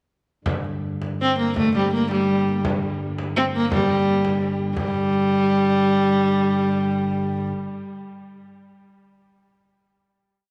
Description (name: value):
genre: medieval dance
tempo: 108-126 BPM (dotted quarters)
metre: 6/8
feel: straight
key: G minor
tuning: A4 = 441 Hz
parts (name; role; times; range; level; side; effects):
- pipe organ, flutes; drone; 0.4-7.5 s; G2 to D3; -31 LUFS; equal; none
- frame drum; percussion; 0.5-4.9 s; none; -32 LUFS; equal; none
- warm viola da gamba; melody; 1.2-7.5 s; G3 to C4; -22 LUFS; equal; tape echo
room: wet echo chamber reverb, RT60 2.3 s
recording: none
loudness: -21 LUFS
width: mono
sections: 0.5-4.8 A section; 4.8-6.7 final chord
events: speeding up 0.5-6.7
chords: none